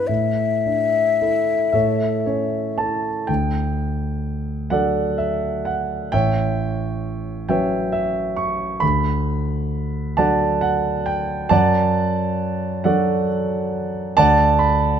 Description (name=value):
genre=classical, romantic duo for flute and grand piano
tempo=34-46 BPM (dotted quarters)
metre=6/8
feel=rubato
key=D major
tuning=A4 = 440 Hz
part: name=mellow hollow silver concert flute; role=melody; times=0.0-2.8 s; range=E5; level=-20 LUFS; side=left 7 dB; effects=none
part: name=warm concert grand piano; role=accompaniment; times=0.0-15.0 s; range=A1 to C#6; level=-18 LUFS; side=right 2 dB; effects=none
room=moderate recital hall reverb, RT60 1.4 s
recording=close, detailed microphones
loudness=-18 LUFS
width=side -8 dB against mid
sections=0.0-3.3 A section; 3.3-15.0 B section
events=none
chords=0.1 Asus4; 1.7 A; 3.3 D; 6.1 A13; 8.8 D; 11.5 D/F#; 14.2 Bm/D